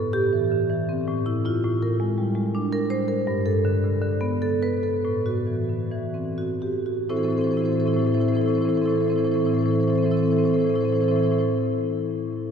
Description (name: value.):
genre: classical, contemporary piece for solo marimba.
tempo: 82-111 BPM.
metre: 3/4.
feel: rubato.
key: A minor.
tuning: A4 = 440 Hz.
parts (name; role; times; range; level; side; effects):
marimba with medium hard mallets; solo; 0.0-11.5 s; G2 to C5; -21 LUFS; equal; none.
room: wet cathedral reverb, RT60 5.4 s.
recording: recorded in a church or concert hall.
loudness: -21 LUFS.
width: side -7 dB against mid.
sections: 0.0-7.1 A section; 7.1-11.3 B section.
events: slowing down 2.4-7.1.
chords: 0.0 Am7; 1.1 Fmaj7/A; 1.6 Bb7/A; 3.3 Gadd9; 5.0 Am6; 7.1 Am.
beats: 0.52 1.08 | 1.63 2.17 2.71 | 3.26 3.82 4.41 | 5.04 5.70 6.38 | 7.10 7.81 8.53 | 9.23 9.94 10.64.